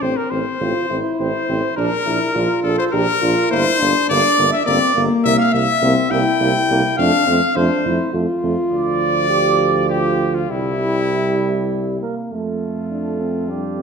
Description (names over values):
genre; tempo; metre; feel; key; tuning
classical, brass quintet; 103 BPM; 3/4; straight; F major; A4 = 438 Hz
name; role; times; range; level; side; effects
clear trumpet; melody; 0.0-13.8 s; E4 to G5; -20 LUFS; left 7 dB; none
mellow flugelhorn; second line; 0.0-13.8 s; E4 to G5; -23 LUFS; right 7 dB; none
mellow French horn; accompaniment; 0.0-13.8 s; Bb3 to G4; -21 LUFS; left 2 dB; none
mellow trombone; accompaniment; 0.0-13.8 s; F3 to D4; -25 LUFS; right 3 dB; none
warm tuba; bass; 0.0-13.8 s; G1 to F2; -22 LUFS; right 3 dB; none
room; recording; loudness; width
wet recital hall reverb, RT60 1.4 s; none; -15 LUFS; side -6 dB against mid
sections
0.0-12.3 A section; 12.3-13.8 B section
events
none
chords
0.0 Am; 1.8 Bb; 3.5 Gm; 5.2 C7; 7.0 F; 8.7 Dm; 10.5 C; 12.3 F